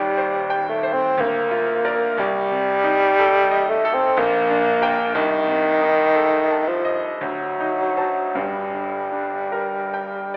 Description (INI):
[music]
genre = classical, romantic duo for bassoon and grand piano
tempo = 49-62 BPM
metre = 3/4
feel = rubato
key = G minor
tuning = A4 = 441 Hz
[part]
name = warm bassoon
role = melody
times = 0.0-10.4 s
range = Eb3 to C4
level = -21 LUFS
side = equal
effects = none
[part]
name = bright concert grand piano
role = accompaniment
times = 0.0-10.4 s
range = Eb1 to A5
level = -27 LUFS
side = equal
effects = none
[sound]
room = wet recital hall reverb, RT60 1.4 s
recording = AM radio sound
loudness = -20 LUFS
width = mono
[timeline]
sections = 0.0-10.4 A section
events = none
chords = 0.0 Cm/Eb; 1.2 Bb/D; 2.2 Adim/C; 4.2 Gm/Bb; 5.1 Adim/C; 7.2 D7b9; 8.4 Gm